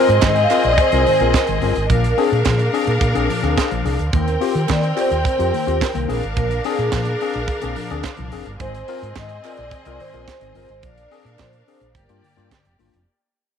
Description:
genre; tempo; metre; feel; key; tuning
disco; 108 BPM; 4/4; straight; unclear; A4 = 443 Hz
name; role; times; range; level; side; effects
vibraphone with soft mallets; melody; 0.0-12.5 s; Ab4 to F5; -21 LUFS; right 1 dB; none
clear studio string section; second line; 0.0-13.0 s; Bb3 to G5; -24 LUFS; left 1 dB; none
tine electric piano; accompaniment; 0.0-13.0 s; G2 to Bb4; -23 LUFS; left 13 dB; overdrive
fingered electric bass; bass; 0.1-13.0 s; F1 to Eb3; -22 LUFS; right 1 dB; none
tight funk drum kit; drums; 0.1-13.1 s; hi-hat, kick drum, snare drum; -22 LUFS; right 3 dB; none
group handclap; percussion; 0.2-12.6 s; none; -34 LUFS; right 12 dB; none
room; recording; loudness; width
moderate spring reverb, RT60 1.5 s, small room ambience; 1960s-style stereo with parts hard left and right; -16 LUFS; side -8 dB against mid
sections
0.0-13.1 A section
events
fade-out 0.0-13.1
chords
0.0 Ab6; 1.9 Bb7; 4.1 Eb69; 6.1 Bb7; 8.6 Ab6; 10.8 Bb7; 11.9 Gm7

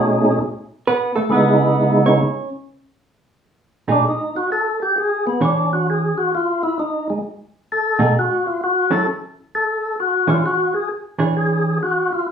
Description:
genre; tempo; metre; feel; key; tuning
jazz; 131 BPM; 4/4; swing 66% on 8ths; unclear; A4 = 435 Hz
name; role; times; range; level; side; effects
percussive tonewheel organ; melody; 0.0-12.3 s; B2 to A4; -17 LUFS; equal; slow rotary speaker, overdrive, chorus vibrato
hollow-body jazz guitar; accompaniment; 0.9-11.8 s; B2 to C#5; -19 LUFS; right 2 dB; none
room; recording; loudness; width
wet studio reverb, RT60 0.6 s; band playing live in one room, studio reverb; -16 LUFS; side -7 dB against mid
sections
0.0-3.1 A section; 3.1-12.3 A section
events
hollow-body jazz guitar solo 0.0-3.1; tonewheel organ solo 3.1-12.3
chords
0.4 Asus2; 1.3 C#m7; 2.2 N.C.; 3.1 B6; 5.0 E6; 6.8 B6; 8.6 F#m7; 9.5 E13b9

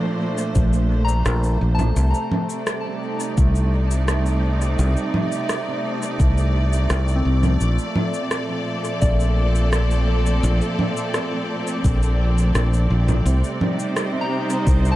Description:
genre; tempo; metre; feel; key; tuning
ambient dub; 85 BPM; 4/4; straight; C dorian; A4 = 440 Hz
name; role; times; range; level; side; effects
rich symphonic string section; sustained chords; 0.0-15.0 s; Bb2 to D5; -25 LUFS; right 1 dB; none
soft synth bell; arpeggios; 0.0-15.0 s; C4 to Bb5; -31 LUFS; left 3 dB; chorus, tape echo
bubbling stepped-filter texture; texture; 0.0-15.0 s; A3; -30 LUFS; right 3 dB; chorus, built-in reverb
electronic cabasa, rim click and congas; drums; 0.4-15.0 s; none; -26 LUFS; equal; dub echo
fingered electric bass; bass; 0.6-15.0 s; Bb1 to C2; -18 LUFS; equal; none
electronic kick drum; drums; 0.6-14.8 s; none; -19 LUFS; equal; none
room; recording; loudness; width
little or no reverb; none; -18 LUFS; side -15 dB against mid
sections
0.0-15.0 A section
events
none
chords
0.0 Bbmaj7; 2.0 Cm; 7.6 Bbmaj7; 13.3 Cm7

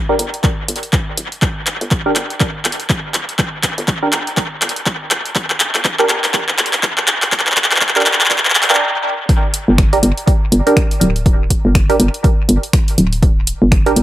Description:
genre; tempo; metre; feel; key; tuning
minimal techno; 122 BPM; 4/4; swing 59% on 16ths; G minor; A4 = 440 Hz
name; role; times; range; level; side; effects
hollow knocking FM bass; bass; 0.0-14.0 s; D1 to G2; -15 LUFS; equal; sidechain pumping, high-pass filter
wavetable chord stab; stabs; 0.1-13.9 s; D4 to Bb4; -19 LUFS; right 2 dB; dub echo
punchy analog drum machine; drums; 0.2-14.0 s; finger snaps, handclaps, hi-hat; -16 LUFS; equal; overdrive, dub echo
electronic kick drum; drums; 0.4-13.8 s; none; -15 LUFS; equal; overdrive
room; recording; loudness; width
moderate spring reverb, RT60 1.6 s; echo-heavy mix, high-pass filter; -12 LUFS; side -14 dB against mid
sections
0.0-9.3 A section; 9.3-14.0 B section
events
build-up 0.0-9.3; drum fill 0.0-8.8; filter sweep on synth stab 0.0-9.3; filter sweep 0.0-9.3; break 8.8-9.3; drop 9.3-14.0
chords
0.0 G5

